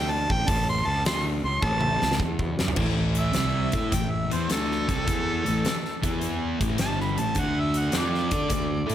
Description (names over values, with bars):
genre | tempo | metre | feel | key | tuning
blues rock power trio and southern rock | 105 BPM | 4/4 | swing 68% on 8ths | unclear | A4 = 440 Hz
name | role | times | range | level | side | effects
mellow harmonica | melody | 0.0-8.9 s | A4 to C6 | -28 LUFS | right 1 dB | overdrive, plate reverb
fuzz fingered electric bass | bass | 0.0-8.9 s | G1 to D3 | -29 LUFS | equal | overdrive
huge arena drum kit | drums | 0.3-8.9 s | crash cymbal, hi-hat, kick drum, snare drum, toms | -28 LUFS | equal | none
fuzz guitar | riff | 2.8-8.9 s | G2 to D5 | -27 LUFS | equal | distortion
room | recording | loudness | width
light reverb | faint mains hum | -23 LUFS | side -11 dB against mid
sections
0.0-2.8 A section; 2.8-8.9 B section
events
harmonica solo 0.0-2.8; drum fill 1.6-2.8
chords
0.0 A; 2.8 A5; 5.9 E5; 6.5 A5; 7.4 D5